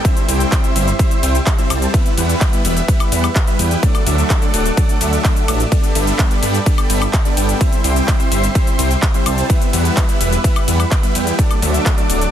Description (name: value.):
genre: EDM, festival progressive house.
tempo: 127 BPM.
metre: 4/4.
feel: straight.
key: unclear.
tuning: A4 = 444 Hz.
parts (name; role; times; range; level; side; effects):
lush unison pad; sustained chords; 0.0-12.3 s; G4 to D6; -26 LUFS; equal; chorus, sidechain pumping.
supersaw chords; riff; 0.0-12.2 s; F#3 to A5; -20 LUFS; equal; sidechain pumping, tape echo.
big-room dance drum kit; drums; 0.0-12.3 s; handclaps, hi-hat, ride cymbal, shaker, woodblock; -22 LUFS; left 2 dB; overdrive.
electronic kick drum; drums; 0.0-12.0 s; none; -15 LUFS; equal; overdrive.
downlifter; sound effects; 0.0-1.9 s; none; barely audible; none; none.
wide detuned saw bass; bass; 0.3-12.3 s; D1 to G2; -17 LUFS; equal; chorus, sidechain pumping.
room: light reverb.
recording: dense, heavily limited modern master.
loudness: -13 LUFS.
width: side -10 dB against mid.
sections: 0.0-12.3 A section.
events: none.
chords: 0.0 C; 1.9 Em; 3.8 D; 5.7 Gadd9; 7.6 C; 9.5 Em; 11.4 D.